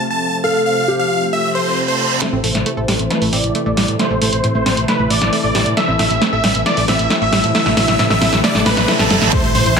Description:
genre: uplifting trance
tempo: 135 BPM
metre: 4/4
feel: straight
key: A minor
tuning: A4 = 440 Hz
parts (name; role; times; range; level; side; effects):
- lush unison pad; sustained chords; 0.0-9.8 s; C3 to E4; -21 LUFS; left 1 dB; chorus, sidechain pumping
- big supersaw lead; melody; 0.1-9.8 s; A4 to A5; -18 LUFS; equal; sidechain pumping, low-pass filter, tape echo
- felt-muted upright piano; second line; 0.4-2.1 s; G4 to A4; -20 LUFS; equal; digital delay
- reverse cymbal, riser and impact; sound effects; 1.5-9.8 s; none; -24 LUFS; right 2 dB; none
- analog pluck; arpeggios; 2.2-9.1 s; A2 to A4; -22 LUFS; right 2 dB; chorus, cassette tape, sidechain pumping, digital delay
- punchy analog drum machine; drums; 2.2-9.8 s; crash cymbal, handclaps, hi-hat, snare drum; -18 LUFS; equal; none
- solid FM bass; bass; 2.3-9.7 s; G1 to A2; -21 LUFS; equal; sidechain pumping
- electronic kick drum; drums; 9.3-9.8 s; none; -18 LUFS; equal; none
room: moderate recital hall reverb, RT60 1.6 s, digital ambience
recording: none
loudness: -13 LUFS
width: side -6 dB against mid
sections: 0.0-2.2 A section; 2.2-9.3 B section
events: reverse cymbal 1.5-2.2, 8.4-9.3; build-up 2.2-9.3; drum fill 2.2-9.3; filter sweep on supersaw synth 2.2-9.3; impact 9.3-9.8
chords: 0.0 F; 2.2 Am

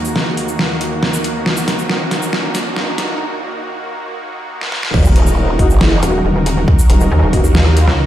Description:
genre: heavy wobble dubstep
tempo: 138 BPM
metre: 4/4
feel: half-time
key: Eb minor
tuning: A4 = 441 Hz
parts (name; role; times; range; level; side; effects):
- supersaw pad; sustained chords; 0.0-8.1 s; Eb2 to Bb4; -21 LUFS; right 1 dB; sidechain pumping
- dubstep drum kit; drums; 0.0-8.0 s; crash cymbal, hi-hat, shaker, snare drum; -19 LUFS; equal; overdrive
- riser and sub drop; sound effects; 0.0-6.7 s; none; -24 LUFS; equal; none
- growl bass; bass; 4.9-7.9 s; Eb1 to Eb2; -13 LUFS; equal; chorus, overdrive
- electronic kick drum; drums; 4.9-7.4 s; none; -12 LUFS; equal; overdrive
- mellow brass ensemble; stabs; 5.6-7.4 s; Bb3 to Gb4; -22 LUFS; left 1 dB; tape echo
- pulsing pluck wobble bass; bass; 6.0-8.1 s; Eb1 to Eb2; -13 LUFS; equal; chorus, overdrive
room: light reverb, digital ambience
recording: played on a big sound system in a bare room, stone room reverb, high-pass filter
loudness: -12 LUFS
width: side -12 dB against mid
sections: 0.0-4.9 A section; 4.9-8.1 B section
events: build-up 0.0-4.9; drum fill 0.0-3.2, 4.6-4.9; riser 0.0-3.2; filter sweep 0.0-4.9; break 3.2-4.9; drop 4.9-8.1; impact 4.9-6.7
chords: 0.0 Ebm

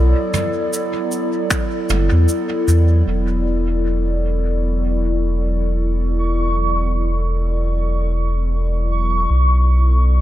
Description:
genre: ambient dub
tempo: 77 BPM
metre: 4/4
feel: swing 57% on 16ths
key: unclear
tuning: A4 = 445 Hz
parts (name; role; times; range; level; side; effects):
- warbly tape-like pad; sustained chords; 0.0-10.2 s; F#3 to D5; -22 LUFS; equal; chorus, built-in reverb, phaser
- warm sub bass; bass; 0.0-10.2 s; E1 to E2; -16 LUFS; equal; tube saturation
- soft brush drum kit; drums; 0.3-10.2 s; cabasa, finger snaps, toms; -26 LUFS; right 2 dB; low-pass filter on toms, low-pass filter on snare, low-pass filter on perc, low-pass filter on room, dub echo
- electronic kick drum; drums; 1.5-1.7 s; none; -22 LUFS; equal; none
- bubbling stepped-filter texture; texture; 3.1-10.2 s; C#6; -25 LUFS; right 1 dB; chorus, built-in reverb
room: light reverb, small room ambience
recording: none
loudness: -16 LUFS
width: side -14 dB against mid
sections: 0.0-3.1 A section; 3.1-10.2 B section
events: none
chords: 0.0 Bm7; 3.1 Esus2; 9.3 Bm7

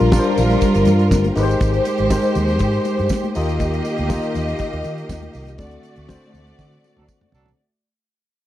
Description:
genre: disco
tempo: 120 BPM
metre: 4/4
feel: straight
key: unclear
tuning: A4 = 441 Hz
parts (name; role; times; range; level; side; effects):
- rich studio string section; second line; 0.0-7.6 s; G3 to Eb5; -20 LUFS; right 1 dB; none
- tine electric piano; accompaniment; 0.0-7.6 s; D3 to Eb5; -22 LUFS; left 5 dB; overdrive, medium stereo tremolo
- vintage muted fingered electric bass; bass; 0.0-7.5 s; G1 to Eb3; -21 LUFS; right 1 dB; none
- damped 70s drum kit; drums; 0.1-7.6 s; hi-hat, kick drum, snare drum, toms; -21 LUFS; equal; none
- congas; percussion; 0.1-7.3 s; none; -30 LUFS; left 6 dB; none
- tambourine; percussion; 0.1-7.6 s; none; -39 LUFS; right 12 dB; none
- warm horn section; stabs; 7.0-7.5 s; F#3 to A4; -62 LUFS; right 6 dB; none
room: little or no reverb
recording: dry, close 1970s-style studio recording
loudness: -16 LUFS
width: side -13 dB against mid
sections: 0.0-7.6 A section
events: fade-out 0.0-7.6; band accent 5.6-7.6; drum fill 6.6-7.6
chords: 0.0 Gm7; 1.4 Abmaj7; 3.4 Eb; 5.6 D7

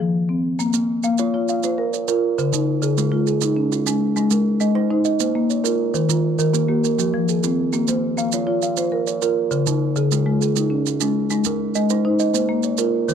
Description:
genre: southern african traditional, mbira-style interlocking cycle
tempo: 134 BPM (dotted quarters)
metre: 12/8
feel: straight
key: Bb equiheptatonic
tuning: A4 = 440 Hz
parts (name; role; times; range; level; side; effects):
- marimba with soft mallets; arpeggios; 0.0-13.1 s; Db3+43c to Db5+43c; -20 LUFS; left 3 dB; none
- maracas; percussion; 0.6-13.1 s; none; -27 LUFS; right 20 dB; none
- kalimba; arpeggios; 0.7-13.1 s; Db3+43c to F5; -22 LUFS; right 7 dB; none
room: small room ambience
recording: dry, close 1970s-style studio recording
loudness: -18 LUFS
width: side -8 dB against mid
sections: 0.6-13.1 A section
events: none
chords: 0.0 Fm; 0.6 Bbm; 2.4 Db; 4.2 Ab; 5.1 Bbm; 5.9 Eb; 6.8 Fm; 7.7 Bbm; 9.5 Db; 11.3 Ab; 12.2 Bbm

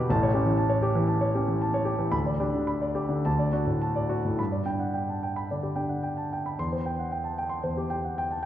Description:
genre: classical, romantic character piece for solo piano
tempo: 106-125 BPM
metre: 4/4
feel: rubato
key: G major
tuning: A4 = 440 Hz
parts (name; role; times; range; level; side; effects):
- warm concert grand piano; solo; 0.0-8.5 s; A1 to C6; -25 LUFS; equal; none
room: wet concert hall reverb, RT60 1.8 s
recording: none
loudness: -25 LUFS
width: side -11 dB against mid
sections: 0.0-4.4 A section; 4.4-8.5 B section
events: none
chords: 0.1 A7; 2.1 G/D; 3.3 D; 4.4 G; 6.6 C/E

